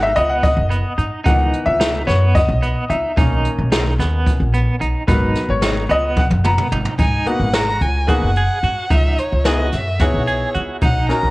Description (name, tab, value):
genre	progressive instrumental, band music in an uneven meter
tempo	220 BPM (eighths)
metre	7/8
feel	straight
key	G# minor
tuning	A4 = 440 Hz
part	bright grand piano	accompaniment	0.0-11.3 s	D#3 to A#5	-20 LUFS	left 1 dB	cassette tape
part	clean electric guitar	arpeggios	0.0-11.2 s	B3 to G#4	-24 LUFS	right 3 dB	tremolo, cassette tape
part	upright bass	bass	0.0-11.3 s	F#1 to G#2	-19 LUFS	equal	none
part	jazz brush drum kit	drums	0.2-11.2 s	hi-hat, kick drum, snare drum, toms	-19 LUFS	equal	cassette tape
part	dark violin	melody	7.0-11.3 s	C#5 to A#5	-22 LUFS	equal	analog delay
room	light reverb, small room reverb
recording	home recording on cassette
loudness	-15 LUFS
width	side -20 dB against mid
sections	0.0-7.0 A section; 7.0-11.3 B section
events	grand piano solo 0.0-7.0; drum fill 6.2-7.0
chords	0.0 G#m7; 1.3 C#m9; 3.2 Bmaj7; 5.1 G#m9; 8.9 C#m9